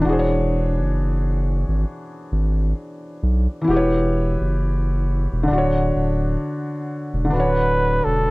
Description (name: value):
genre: hip hop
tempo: 66 BPM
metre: 4/4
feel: swing 60% on 16ths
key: unclear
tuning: A4 = 440 Hz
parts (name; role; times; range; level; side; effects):
- felt-muted upright piano; accompaniment; 0.0-8.3 s; D3 to C#5; -22 LUFS; left 1 dB; low-pass filter
- saturated sub bass; bass; 0.0-8.3 s; D1 to B1; -20 LUFS; equal; none
- breathy flugelhorn; melody; 7.3-8.3 s; A4 to B4; -21 LUFS; right 1 dB; low-pass filter
room: little or no reverb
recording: cassette tape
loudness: -18 LUFS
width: side -24 dB against mid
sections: 0.0-7.3 A section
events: break 0.0-7.3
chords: 0.0 E13; 3.7 Em69; 5.5 Dmaj7